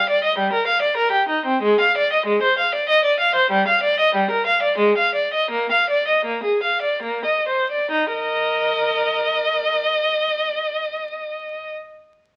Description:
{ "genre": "classical, baroque-style suite movement for unaccompanied violin", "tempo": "65-102 BPM", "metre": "3/4", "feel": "rubato", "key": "Eb major", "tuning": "A4 = 440 Hz", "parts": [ { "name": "rich violin", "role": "solo", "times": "0.0-11.7 s", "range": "G3 to F5", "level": "-20 LUFS", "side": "equal", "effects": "none" } ], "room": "moderate stone room reverb, RT60 1.1 s", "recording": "very old 78 rpm record, vinyl crackle", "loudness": "-19 LUFS", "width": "mono", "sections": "0.0-7.9 A section; 7.9-12.4 B section", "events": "slowing down 2.6-7.9", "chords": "0.0 Eb/G; 1.6 Ab; 3.5 Eb/G; 4.8 Fm7/Ab; 5.5 Bb7sus4; 7.0 Bb; 7.9 Eb5" }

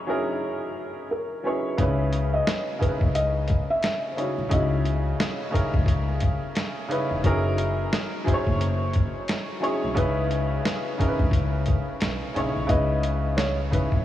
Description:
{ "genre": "lo-fi hip hop", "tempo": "88 BPM", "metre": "4/4", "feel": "swing 60% on 16ths", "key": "C# dorian", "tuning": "A4 = 441 Hz", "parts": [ { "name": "clear upright piano", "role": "accompaniment", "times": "0.0-14.0 s", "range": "C#3 to C#5", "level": "-27 LUFS", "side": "equal", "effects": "cassette tape, low-pass filter" }, { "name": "felt-muted upright piano", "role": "melody", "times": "1.1-5.8, 12.7-14.0 s", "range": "A#4 to E5", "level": "-29 LUFS", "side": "equal", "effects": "low-pass filter, analog delay" }, { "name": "upright bass", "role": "bass", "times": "1.8-14.0 s", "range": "E1 to C#2", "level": "-26 LUFS", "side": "left 1 dB", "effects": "none" }, { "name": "lo-fi sampler-style drum kit", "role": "drums", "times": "1.8-14.0 s", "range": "hi-hat, kick drum, snare drum", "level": "-26 LUFS", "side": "equal", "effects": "none" } ], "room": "moderate huge ambient reverb, RT60 5.2 s", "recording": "dreamy mix soaked in reverb, small room ambience", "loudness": "-22 LUFS", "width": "side -12 dB against mid", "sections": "0.0-12.7 A section; 12.7-14.0 B section", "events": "none", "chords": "0.0 F#13; 1.8 C#m9; 7.2 F#13; 10.0 C#m7" }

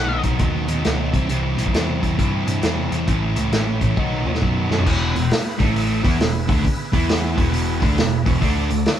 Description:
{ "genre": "blues rock power trio and southern rock", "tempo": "135 BPM", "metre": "4/4", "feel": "swing 64% on 8ths", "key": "E mixolydian from 4.9 s", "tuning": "A4 = 439 Hz", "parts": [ { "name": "sludgy distorted guitar", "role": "riff", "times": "0.0-8.8 s", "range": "E2 to E4", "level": "-21 LUFS", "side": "right 1 dB", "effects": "overdrive" }, { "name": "vintage muted picked electric bass", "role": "bass", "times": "0.0-8.8 s", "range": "E1 to G2", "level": "-24 LUFS", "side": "equal", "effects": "none" }, { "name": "vintage drum kit", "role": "drums", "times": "0.2-9.0 s", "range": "crash cymbal, hi-hat, kick drum, snare drum, toms", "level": "-21 LUFS", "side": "equal", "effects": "none" }, { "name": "overdriven tonewheel organ", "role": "sustained chords", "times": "4.9-9.0 s", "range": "A3 to E5", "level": "-31 LUFS", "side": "right 2 dB", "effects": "slow rotary speaker, chorus vibrato" } ], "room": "moderate studio reverb, RT60 0.7 s", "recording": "band playing live in one room", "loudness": "-17 LUFS", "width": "side -10 dB against mid", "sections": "0.0-4.9 A section; 4.9-9.0 B section", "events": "drum fill 4.0-4.9", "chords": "0.0 B; 1.1 C; 3.1 A; 4.0 B; 4.9 E; 5.5 A5; 6.0 E; 8.4 D5" }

